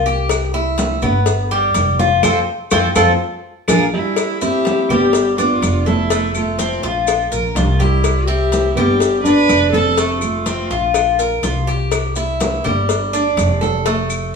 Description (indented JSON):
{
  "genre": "latin, Cuban son and guajira",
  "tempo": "124 BPM",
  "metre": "4/4",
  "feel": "straight",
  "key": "C major",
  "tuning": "A4 = 441 Hz",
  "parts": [
    { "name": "warm viola", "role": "melody", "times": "0.0, 3.7-11.1 s", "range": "D4 to B4", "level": "-20 LUFS", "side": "left 2 dB", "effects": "none" },
    { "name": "nylon-string guitar", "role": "second line", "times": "0.0-0.1, 3.7-10.9 s", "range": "F3 to D4", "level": "-20 LUFS", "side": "right 1 dB", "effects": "none" },
    { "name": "Cuban tres", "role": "arpeggios", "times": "0.0-14.3 s", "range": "G3 to Bb4", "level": "-18 LUFS", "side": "equal", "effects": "none" },
    { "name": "upright bass", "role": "bass", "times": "0.0-14.4 s", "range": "F1 to F2", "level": "-20 LUFS", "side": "equal", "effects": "none" },
    { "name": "congas", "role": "percussion", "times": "0.1-14.3 s", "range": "none", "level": "-25 LUFS", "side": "left 2 dB", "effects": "none" },
    { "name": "maracas", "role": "percussion", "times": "0.1-14.3 s", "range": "none", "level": "-30 LUFS", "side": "left 3 dB", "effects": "none" },
    { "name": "claves", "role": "percussion", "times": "0.3-14.3 s", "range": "none", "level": "-28 LUFS", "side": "equal", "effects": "none" },
    { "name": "cowbell", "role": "percussion", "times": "0.3-14.1 s", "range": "none", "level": "-24 LUFS", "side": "left 7 dB", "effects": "none" }
  ],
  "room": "wet stone room reverb, RT60 1.0 s",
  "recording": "band playing live in one room",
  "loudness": "-14 LUFS",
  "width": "side -5 dB against mid",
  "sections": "0.0-4.2 A section; 4.2-14.4 B section",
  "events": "band accent 2.2-4.2; drum fill 3.4-4.2",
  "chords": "0.3 C; 1.3 G7; 2.2 F; 3.2 Bb5; 4.2 C; 5.1 G7; 6.1 F; 7.1 Bb5; 8.0 C; 9.0 G7; 10.0 F; 10.9 Bb5; 11.9 C; 12.9 G5"
}